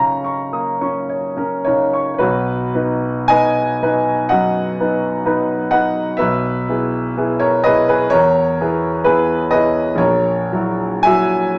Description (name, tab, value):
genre	classical, romantic nocturne for solo piano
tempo	51-66 BPM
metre	4/4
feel	rubato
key	B major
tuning	A4 = 440 Hz
part	clear concert grand piano	solo	0.0-11.6 s	A#1 to D#6	-17 LUFS	equal	none
room	moderate studio reverb, RT60 0.8 s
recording	none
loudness	-17 LUFS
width	mono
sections	0.0-2.2 A section; 2.2-11.6 B section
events	none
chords	0.0 F#; 2.2 B; 6.2 E/B; 10.0 F#7/A#